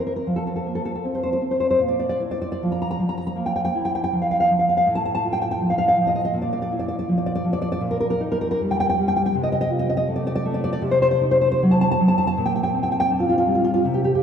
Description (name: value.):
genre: romantic piece for solo classical guitar.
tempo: 80 BPM.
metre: 4/4.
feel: uneven beats, rubato.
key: G minor from 7.8 s.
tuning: A4 = 441 Hz.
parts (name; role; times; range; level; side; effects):
nylon-string guitar; solo; 0.0-14.2 s; A2 to Bb5; -19 LUFS; equal; none.
room: wet cathedral reverb, RT60 4.1 s.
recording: recorded in a church or concert hall, lossy compression artefacts.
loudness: -19 LUFS.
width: side -8 dB against mid.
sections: 0.0-14.2 A section.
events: none.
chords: 0.3 F5; 1.8 Bb5; 4.9 F/A; 6.3 Bb5; 7.8 Gm/Bb; 9.3 Cm69; 10.8 Cdim7; 12.4 Gm/Bb.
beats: 0.26 1.04 | 1.80 2.62 3.38 4.13 | 4.88 5.61 6.34 7.08 | 7.81 8.60 9.35 10.07 | 10.81 11.61 12.37 13.11 | 13.86.